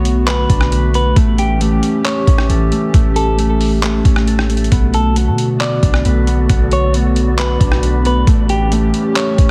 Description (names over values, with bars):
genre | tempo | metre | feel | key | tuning
hip hop, atmospheric cloud-rap | 135 BPM | 4/4 | half-time | B minor | A4 = 440 Hz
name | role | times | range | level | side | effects
dark analog pad | sustained chords | 0.0-9.5 s | D3 to G4 | -21 LUFS | equal | chorus, sidechain pumping
Celtic harp | arpeggios | 0.0-9.5 s | A3 to B4 | -24 LUFS | equal | digital delay
clean 808-style bass | bass | 0.0-9.5 s | A1 to B2 | -18 LUFS | equal | none
trip hop sampler-style drum kit | drums | 0.1-9.5 s | handclaps, hi-hat, kick drum, rim click | -18 LUFS | equal | none
semi-hollow electric guitar | melody | 0.3-9.5 s | G4 to D5 | -24 LUFS | equal | digital delay
wind-like tuned noise texture | texture | 5.3-9.5 s | A3 to D5 | -33 LUFS | equal | built-in reverb
room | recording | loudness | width
light reverb | heavily compressed radio sound | -14 LUFS | mono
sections
0.0-9.5 A section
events
none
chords
0.0 Bm7; 1.2 A7; 4.7 Bm7; 8.3 A7